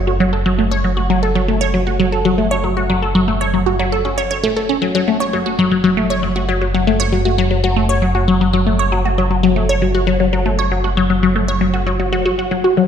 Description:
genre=ambient, sequencer-driven space music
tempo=117 BPM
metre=4/4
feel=straight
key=F# minor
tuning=A4 = 439 Hz
part: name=resonant blip pluck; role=riff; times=0.0-12.9 s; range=F#3 to C#5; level=-15 LUFS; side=left 1 dB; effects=phaser, analog delay
part: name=round analog bass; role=bass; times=0.0-12.9 s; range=F#1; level=-20 LUFS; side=equal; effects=none
room=wet concert hall reverb, RT60 2.0 s, digital ambience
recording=dark, warm production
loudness=-14 LUFS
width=side -8 dB against mid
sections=0.0-12.9 A section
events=none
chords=0.0 F#m

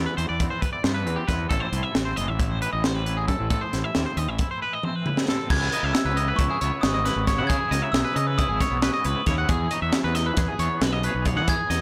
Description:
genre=math rock and midwest emo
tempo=271 BPM (eighths)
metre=9/8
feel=straight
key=unclear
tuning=A4 = 440 Hz
part: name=twangy electric guitar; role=accompaniment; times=0.0-11.8 s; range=E2 to A4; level=-37 LUFS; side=equal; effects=tremolo
part: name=twangy electric guitar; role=arpeggios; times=0.0-11.8 s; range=G4 to F#5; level=-30 LUFS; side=equal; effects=analog delay
part: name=fuzz fingered electric bass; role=bass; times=0.0-11.8 s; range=F#1 to E3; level=-29 LUFS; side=equal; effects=overdrive
part: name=crisp fusion drum kit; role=drums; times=0.2-11.8 s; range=crash cymbal, hi-hat, kick drum, snare drum, toms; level=-28 LUFS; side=equal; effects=none
part: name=glockenspiel with hard plastic mallets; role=melody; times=5.5-11.8 s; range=C#6 to G#6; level=-32 LUFS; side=equal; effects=none
room=light reverb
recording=blown-out, overdriven recording, overdrive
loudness=-24 LUFS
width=mono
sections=0.0-5.5 A section; 5.5-11.8 B section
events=drum fill 4.8-5.5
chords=0.0 Cmaj7; 1.5 Amadd9; 5.5 C#m9; 9.5 Emaj7

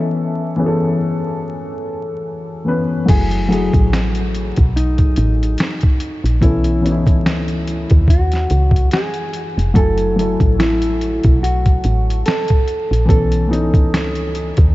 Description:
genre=lo-fi hip hop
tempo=72 BPM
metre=4/4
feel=swing 56% on 16ths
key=F# dorian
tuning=A4 = 440 Hz
part: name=dark upright piano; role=accompaniment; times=0.0-14.7 s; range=E3 to G#5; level=-20 LUFS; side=left 2 dB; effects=cassette tape, low-pass filter
part: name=mellow electric guitar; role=melody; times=3.1-14.7 s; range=D#4 to A4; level=-22 LUFS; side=equal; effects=lush chorus, low-pass filter, analog delay
part: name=woody FM bass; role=bass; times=3.1-14.7 s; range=E#1 to D#2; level=-17 LUFS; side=equal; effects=none
part: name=boom bap sampler-style drum kit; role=drums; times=3.1-14.7 s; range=crash cymbal, hi-hat, kick drum, snare drum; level=-16 LUFS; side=equal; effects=none
room=light reverb, digital ambience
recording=vinyl crackle, nothing above 7.7 kHz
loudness=-14 LUFS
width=side -18 dB against mid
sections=0.0-3.1 A section; 3.1-14.7 B section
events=none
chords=0.0 B9sus4; 3.1 F#m9; 6.4 B9sus4; 9.8 F#m9; 13.1 B9sus4

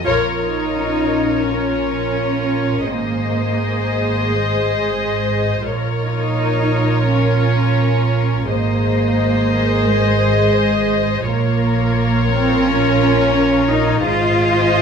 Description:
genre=cinematic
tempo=86 BPM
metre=4/4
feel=straight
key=Bb minor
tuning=A4 = 440 Hz
part: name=warm studio violin section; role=melody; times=0.0-14.8 s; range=Db5 to Eb5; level=-23 LUFS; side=left 5 dB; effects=none
part: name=dark studio violin section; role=second line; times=0.0-14.8 s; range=Bb4 to C5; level=-23 LUFS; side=left 5 dB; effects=none
part: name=warm studio viola section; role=accompaniment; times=0.0-14.8 s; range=F4 to Ab4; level=-24 LUFS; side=right 4 dB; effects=none
part: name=concert harp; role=texture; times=0.0-14.8 s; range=Db4 to C6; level=-28 LUFS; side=left 11 dB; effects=none
part: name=dark studio double bass section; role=bass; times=0.1-14.8 s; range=Ab1 to Bb1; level=-20 LUFS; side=right 3 dB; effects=none
part: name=warm studio cello section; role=bass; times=0.4-14.8 s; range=Ab3 to F4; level=-20 LUFS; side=right 1 dB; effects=none
room=moderate scoring stage reverb, RT60 1.7 s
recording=none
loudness=-15 LUFS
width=side -6 dB against mid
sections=0.1-14.8 A section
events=band accent 0.1-0.8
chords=0.1 Bbm; 2.9 Ab; 5.7 Bbm; 8.5 Ab; 11.3 Bbm; 14.0 Ab

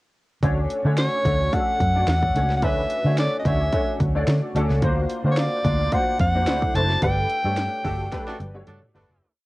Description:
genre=polished 1980s jazz-funk pop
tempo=109 BPM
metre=4/4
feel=swing 54% on 16ths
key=D major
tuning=A4 = 439 Hz
part: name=clear concert grand piano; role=accompaniment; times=0.4-9.2 s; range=A3 to D5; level=-26 LUFS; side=left 1 dB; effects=ensemble chorus, cassette tape
part: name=vintage muted fingered electric bass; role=bass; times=0.4-9.2 s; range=F#1 to D3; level=-22 LUFS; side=equal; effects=none
part: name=house drum kit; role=drums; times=0.4-9.2 s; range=hi-hat, kick drum, snare drum, toms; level=-27 LUFS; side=equal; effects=overdrive, cassette tape
part: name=bright soprano saxophone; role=melody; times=1.0-8.6 s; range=C#5 to A5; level=-24 LUFS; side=equal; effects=cassette tape
part: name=clear horn section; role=second line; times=8.3-9.3 s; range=A3 to A4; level=-38 LUFS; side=right 1 dB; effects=cassette tape
room=light reverb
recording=home recording on cassette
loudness=-19 LUFS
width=side -19 dB against mid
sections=0.4-9.2 verse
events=fade-out 7.0-9.2; band accent 7.0-9.2; drum fill 8.1-9.2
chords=0.4 Dmaj7; 4.8 D7alt; 6.5 D9; 7.0 Gmaj9

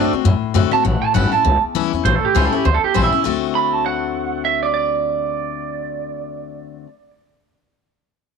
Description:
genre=rockabilly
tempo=200 BPM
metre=4/4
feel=swing 60% on 8ths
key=D mixolydian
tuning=A4 = 440 Hz
part: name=electric guitar through a small old amp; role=melody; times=0.0-7.1 s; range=D4 to B5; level=-19 LUFS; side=right 9 dB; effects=tape echo
part: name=picked steel-string acoustic guitar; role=accompaniment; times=0.0-6.9 s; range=E2 to F#4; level=-21 LUFS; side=left 14 dB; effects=none
part: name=upright bass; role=bass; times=0.0-6.8 s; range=G1 to F#2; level=-19 LUFS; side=left 1 dB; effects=none
room=light reverb, small room ambience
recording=1960s-style stereo with parts hard left and right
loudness=-16 LUFS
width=side -6 dB against mid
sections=0.0-2.0 A section; 2.0-3.2 B section; 3.2-5.7 C section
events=none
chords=0.0 D7; 0.8 A7; 3.2 D7

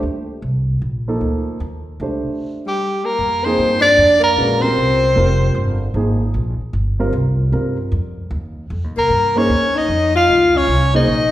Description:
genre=modal jazz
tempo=152 BPM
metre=4/4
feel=swing 65% on 8ths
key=C dorian, F minor from 3.2 s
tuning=A4 = 440 Hz
part: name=upright bass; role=bass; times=0.0-11.3 s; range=F1 to G2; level=-20 LUFS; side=equal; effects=none
part: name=warm concert grand piano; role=accompaniment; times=1.1-11.1 s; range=F3 to C5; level=-22 LUFS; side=right 2 dB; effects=none
part: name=breathy soprano saxophone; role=melody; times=2.7-5.8, 9.0-11.3 s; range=G4 to F5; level=-16 LUFS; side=equal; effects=none
part: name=warm tenor saxophone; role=second line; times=2.7-5.8, 9.0-11.3 s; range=G3 to F4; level=-19 LUFS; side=left 2 dB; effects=none
room=wet recital hall reverb, RT60 1.5 s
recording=recorded in a church or concert hall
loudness=-14 LUFS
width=side -14 dB against mid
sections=0.0-3.2 A section; 3.2-11.3 B section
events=none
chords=0.0 Cm11; 3.2 F9sus4; 9.5 Eb7sus2

